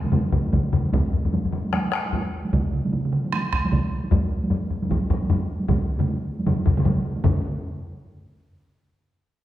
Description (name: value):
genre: japanese traditional, taiko drum ensemble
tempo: 152 BPM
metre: 4/4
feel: swing 60% on 16ths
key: none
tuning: none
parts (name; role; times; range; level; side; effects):
- solo taiko drums; percussion; 0.0-7.6 s; none; -26 LUFS; right 2 dB; none
- taiko ensemble; percussion; 0.0-7.4 s; none; -26 LUFS; right 2 dB; none
- taiko ensemble; percussion; 0.0-7.6 s; none; -24 LUFS; left 3 dB; none
- solo taiko drums; percussion; 0.3-7.4 s; none; -26 LUFS; right 1 dB; none
room: wet recital hall reverb, RT60 1.7 s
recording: heard from further back in the room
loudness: -21 LUFS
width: side -13 dB against mid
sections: 0.0-7.2 A section; 7.2-8.8 B section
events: speeding up 0.0-8.8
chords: none